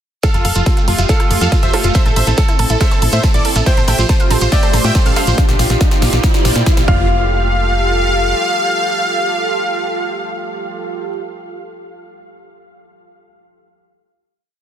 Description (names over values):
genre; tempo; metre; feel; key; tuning
uplifting trance; 140 BPM; 4/4; straight; F major; A4 = 442 Hz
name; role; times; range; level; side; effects
supersaw chords; melody; 0.2-11.1 s; F4 to G5; -20 LUFS; equal; sidechain pumping, tape echo
bright concert grand piano; second line; 0.2-11.1 s; A4 to F5; -25 LUFS; right 1 dB; digital delay
wide unison pluck; second line; 0.2-11.1 s; F5 to G6; -30 LUFS; right 2 dB; none
lush unison pad; sustained chords; 0.5-11.1 s; A3 to D5; -22 LUFS; right 1 dB; chorus, phaser, sidechain pumping
analog pluck; arpeggios; 0.2-7.3 s; F3 to F5; -26 LUFS; right 3 dB; chorus, sidechain pumping, tape echo
big-room dance drum kit; drums; 0.2-6.9 s; hi-hat, rim click, snare drum; -23 LUFS; equal; high-pass filter on snare, sidechain pumping on hats, high-pass filter on hats
electronic kick drum; drums; 0.2-7.0 s; none; -14 LUFS; equal; none
shekere; percussion; 0.2-5.4 s; none; -26 LUFS; right 5 dB; none
riser; sound effects; 2.8-7.1 s; none; -26 LUFS; right 1 dB; none
solid FM bass; bass; 0.3-8.3 s; F1 to Bb2; -16 LUFS; equal; sidechain pumping
room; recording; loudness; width
little or no reverb; dense, heavily limited modern master; -12 LUFS; side -10 dB against mid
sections
0.2-7.1 build; 7.1-10.5 final hit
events
build-up 0.2-7.1; drum fill 0.2-7.1; filter sweep on synth arpeggio sound 0.2-5.4; riser 2.8-7.1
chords
0.2 Fadd9; 1.9 Am; 3.7 Fadd9/A; 5.4 Bb6; 6.9 Fadd9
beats
| 0.24 0.66 1.09 1.52 | 1.95 2.38 2.81 3.24 | 3.66 4.09 4.52 4.95 | 5.38 5.81 6.24 6.66 | 7.09 7.52 7.95 8.38 | 8.81 9.24 9.66 10.09